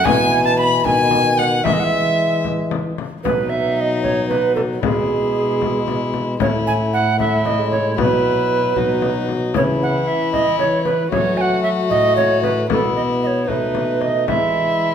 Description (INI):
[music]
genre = classical, renaissance-style consort dance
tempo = 76 BPM (dotted quarters)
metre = 6/8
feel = straight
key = unclear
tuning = A4 = 437 Hz
[part]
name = rich violin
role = melody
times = 0.0-14.9 s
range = D#4 to B5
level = -24 LUFS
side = left 6 dB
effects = none
[part]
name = tenor recorder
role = second line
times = 0.0-14.9 s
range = G#4 to B5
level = -19 LUFS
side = right 4 dB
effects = none
[part]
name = warm bassoon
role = accompaniment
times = 0.0-14.9 s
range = D#3 to B3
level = -24 LUFS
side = left 2 dB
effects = none
[part]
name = dark trombone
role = bass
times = 0.0-14.9 s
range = A2 to F#3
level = -23 LUFS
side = equal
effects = none
[part]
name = frame drum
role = percussion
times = 0.1-14.5 s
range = none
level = -25 LUFS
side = left 6 dB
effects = none
[sound]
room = wet recital hall reverb, RT60 1.7 s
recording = minimal, uncompressed stereo recording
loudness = -15 LUFS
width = side -8 dB against mid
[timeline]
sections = 0.0-3.2 A section; 3.2-14.9 B section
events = none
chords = 0.1 Bsus4; 0.8 B; 1.6 E; 3.2 B; 4.8 E/B; 6.4 A5; 8.0 Bsus4; 9.5 C#m; 11.1 F#m; 12.7 Bsus4; 13.5 B7; 14.3 E